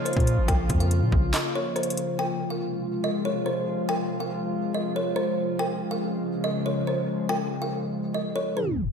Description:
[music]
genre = hip hop, trap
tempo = 141 BPM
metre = 4/4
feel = half-time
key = F minor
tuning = A4 = 440 Hz
[part]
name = kalimba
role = melody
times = 0.0-8.9 s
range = C5 to G5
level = -29 LUFS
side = right 1 dB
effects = diffuse ambient delay
[part]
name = warbly tape-like pad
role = sustained chords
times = 0.0-8.9 s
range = C3 to F4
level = -28 LUFS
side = left 1 dB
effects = chorus, built-in reverb
[part]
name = trap drum kit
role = drums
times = 0.1-2.1 s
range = handclaps, hi-hat, kick drum, snare drum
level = -26 LUFS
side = equal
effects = none
[part]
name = long sustained 808-style bass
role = bass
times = 0.2-1.3 s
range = Ab1 to Bb2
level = -23 LUFS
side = equal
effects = none
[sound]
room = wet lush hall reverb, RT60 1.6 s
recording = dreamy mix soaked in reverb, tape stop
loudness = -24 LUFS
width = side -6 dB against mid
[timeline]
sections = 0.0-2.2 A section; 2.2-8.9 B section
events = break 1.3-2.2; tape stop 8.6-8.9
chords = 0.0 Bbm; 2.2 Fm; 5.6 Db

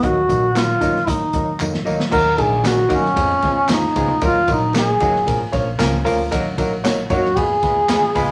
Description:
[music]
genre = uptempo 1960s-style soul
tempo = 114 BPM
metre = 4/4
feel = straight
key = Eb minor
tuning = A4 = 438 Hz
[part]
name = mellow duduk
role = melody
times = 0.0-8.3 s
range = Db4 to Bb4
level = -20 LUFS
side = equal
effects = none
[part]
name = warm baby grand piano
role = accompaniment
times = 0.0-8.3 s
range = Eb3 to Bb5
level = -25 LUFS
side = equal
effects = none
[part]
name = upright bass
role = bass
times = 0.0-8.3 s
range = Gb1 to Gb2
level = -27 LUFS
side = equal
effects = none
[part]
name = swinging big-band drum kit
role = drums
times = 0.0-8.3 s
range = crash cymbal, hi-hat, kick drum, ride cymbal, snare drum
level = -26 LUFS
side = equal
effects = none
[part]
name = congas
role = percussion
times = 0.0-8.1 s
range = none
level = -35 LUFS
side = equal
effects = none
[part]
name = tambourine and handclaps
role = percussion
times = 0.0-8.3 s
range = none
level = -35 LUFS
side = equal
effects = none
[sound]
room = wet club reverb, RT60 0.5 s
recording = none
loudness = -18 LUFS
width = mono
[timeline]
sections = 0.0-2.1 A section; 2.1-8.3 A section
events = drum fill 1.6-2.1; grand piano fill 5.3-6.3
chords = 0.0 Ebm; 3.2 Fdim; 4.2 Ebm; 5.3 Bbm; 6.3 Ebm; 7.4 Fdim

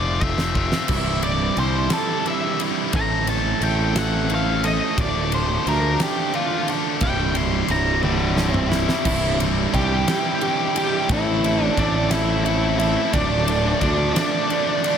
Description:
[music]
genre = quiet-loud alternative rock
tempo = 59 BPM (dotted quarters)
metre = 6/8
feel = straight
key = C major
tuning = A4 = 439 Hz
[part]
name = octave-fuzz lead guitar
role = melody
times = 0.0-15.0 s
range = D4 to C6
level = -24 LUFS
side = left 1 dB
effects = distortion, plate reverb
[part]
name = heavy high-gain guitar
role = riff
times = 0.0-15.0 s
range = C2 to A4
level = -26 LUFS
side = left 9 dB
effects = distortion
[part]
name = fuzz fingered electric bass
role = bass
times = 0.0-14.1 s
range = C1 to D2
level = -24 LUFS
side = equal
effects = overdrive
[part]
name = huge arena drum kit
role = drums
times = 0.2-15.0 s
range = crash cymbal, kick drum, ride cymbal, snare drum, toms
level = -25 LUFS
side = equal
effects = none
[part]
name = biting overdriven guitar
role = riff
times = 0.9-15.0 s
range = C2 to A4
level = -26 LUFS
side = right 18 dB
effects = none
[sound]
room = light reverb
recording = none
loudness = -18 LUFS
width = side -8 dB against mid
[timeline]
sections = 0.0-9.1 A section; 9.1-15.0 B section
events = drum fill 0.0-0.9, 8.0-9.1; lead electric guitar solo 0.0-9.1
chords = 0.0 F; 0.9 C; 2.9 Am; 5.0 Dm; 7.0 C; 11.1 Am; 13.1 Dm

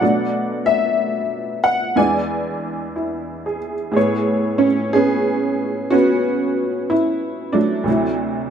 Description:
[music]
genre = solo jazz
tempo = 61 BPM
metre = 4/4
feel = swing 66% on 8ths, rubato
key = A major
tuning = A4 = 438 Hz
[part]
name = honky-tonk upright piano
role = solo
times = 0.0-8.5 s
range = D2 to G#5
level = -17 LUFS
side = equal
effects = none
[sound]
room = moderate small room reverb, RT60 0.5 s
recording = band playing live in one room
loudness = -17 LUFS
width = side -8 dB against mid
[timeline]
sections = 0.0-4.0 A section; 4.0-8.5 A section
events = none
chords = 0.0 Bm7; 2.0 E7; 4.0 Amaj9; 7.9 D9

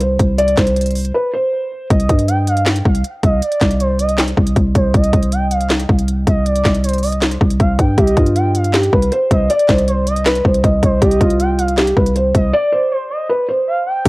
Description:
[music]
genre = hip hop, trap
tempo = 158 BPM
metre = 4/4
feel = half-time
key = C harmonic minor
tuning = A4 = 441 Hz
[part]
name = felt-muted upright piano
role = melody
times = 0.0-1.9, 8.0-14.1 s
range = F4 to Eb5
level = -16 LUFS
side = equal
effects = low-pass filter
[part]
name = growling 808-style bass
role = bass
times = 0.0-14.1 s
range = C2 to G2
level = -16 LUFS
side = equal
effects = none
[part]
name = trap drum kit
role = drums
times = 0.0-14.1 s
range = crash cymbal, handclaps, hi-hat, kick drum, snare drum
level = -16 LUFS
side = equal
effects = none
[part]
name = gliding portamento lead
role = second line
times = 1.9-14.0 s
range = C5 to G5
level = -21 LUFS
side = right 1 dB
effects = chorus, analog delay
[sound]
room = digital ambience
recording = dry, gritty hardware recording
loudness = -12 LUFS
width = side -21 dB against mid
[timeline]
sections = 0.0-14.1 A section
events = break 1.1-1.9, 12.5-14.1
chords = 0.0 N.C.; 1.9 Cmadd9

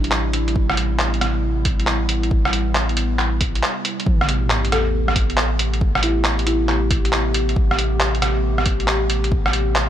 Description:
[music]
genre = future garage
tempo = 137 BPM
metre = 4/4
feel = swing 66% on 16ths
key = A minor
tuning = A4 = 441 Hz
[part]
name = buzzing marimba with soft mallets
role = melody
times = 0.0-0.1, 4.7-6.9 s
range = D4 to A4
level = -28 LUFS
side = left 1 dB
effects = analog delay
[part]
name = warbly tape-like pad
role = sustained chords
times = 0.0-9.9 s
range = C3 to G4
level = -25 LUFS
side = equal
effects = chorus, built-in reverb, sidechain pumping
[part]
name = soft dub sub bass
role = bass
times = 0.0-9.9 s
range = A1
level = -22 LUFS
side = equal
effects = sidechain pumping
[part]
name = lo-fi sampler-style drum kit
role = drums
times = 0.0-9.9 s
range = handclaps, hi-hat, rim click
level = -21 LUFS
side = right 1 dB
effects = none
[part]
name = electronic kick drum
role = drums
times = 0.6-9.4 s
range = none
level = -20 LUFS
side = equal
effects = none
[part]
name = sub drop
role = sound effects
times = 4.1-5.8 s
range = none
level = -30 LUFS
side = equal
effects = none
[sound]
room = light reverb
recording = none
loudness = -17 LUFS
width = side -10 dB against mid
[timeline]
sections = 0.0-4.1 A section; 4.1-9.9 B section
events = break 3.6-4.1; impact 4.1-5.8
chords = 0.0 C6/A; 4.1 Am9

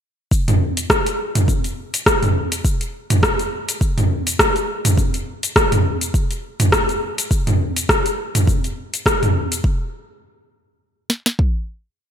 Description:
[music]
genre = downtempo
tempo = 103 BPM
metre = 4/4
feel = swing 56% on 16ths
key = none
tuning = none
[part]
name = afro-pop drum kit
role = drums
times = 0.3-11.5 s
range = kick drum, snare drum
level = -19 LUFS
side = equal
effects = none
[part]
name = deep house drum kit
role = drums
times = 0.3-9.6 s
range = hi-hat, rim click, shaker, toms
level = -17 LUFS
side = equal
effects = overdrive
[sound]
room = moderate lush hall reverb, RT60 1.9 s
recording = bright 1980s-style digital production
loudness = -17 LUFS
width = side -8 dB against mid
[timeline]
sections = 0.3-9.6 groove; 9.6-12.0 final hit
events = none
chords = none

